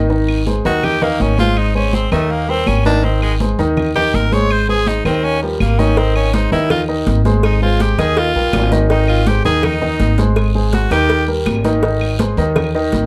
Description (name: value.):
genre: latin, salsa.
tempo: 164 BPM.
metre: 4/4.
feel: straight.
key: Ab major.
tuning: A4 = 441 Hz.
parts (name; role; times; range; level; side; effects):
warm baby grand piano; accompaniment; 0.0-13.0 s; Eb3 to Eb5; -21 LUFS; equal; none.
upright bass; bass; 0.0-13.1 s; Ab1 to Eb2; -20 LUFS; equal; none.
congas; percussion; 0.1-13.1 s; none; -25 LUFS; equal; none.
guiro; percussion; 0.1-13.1 s; none; -37 LUFS; equal; none.
claves; percussion; 0.3-12.7 s; none; -33 LUFS; equal; none.
raspy tenor saxophone; melody; 0.7-11.3 s; F3 to Db5; -21 LUFS; equal; none.
cowbell; percussion; 6.0-13.1 s; none; -25 LUFS; equal; none.
room: moderate studio reverb, RT60 0.5 s.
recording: dark, warm production.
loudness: -15 LUFS.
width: mono.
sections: 0.0-13.1 A section.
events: tenor saxophone solo 0.0-13.1.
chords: 0.1 Ab; 2.3 Eb; 3.0 Ab; 5.2 Eb; 6.0 Ab; 8.2 Eb; 8.9 Ab; 11.1 Eb; 11.8 Ab5.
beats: | 0.10 0.47 0.84 1.20 | 1.57 1.94 2.30 2.67 | 3.04 3.40 3.77 4.14 | 4.50 4.87 5.24 5.60 | 5.97 6.33 6.70 7.07 | 7.43 7.80 8.16 8.53 | 8.90 9.26 9.63 10.00 | 10.36 10.73 11.10 11.46 | 11.83 12.19 12.56 12.93.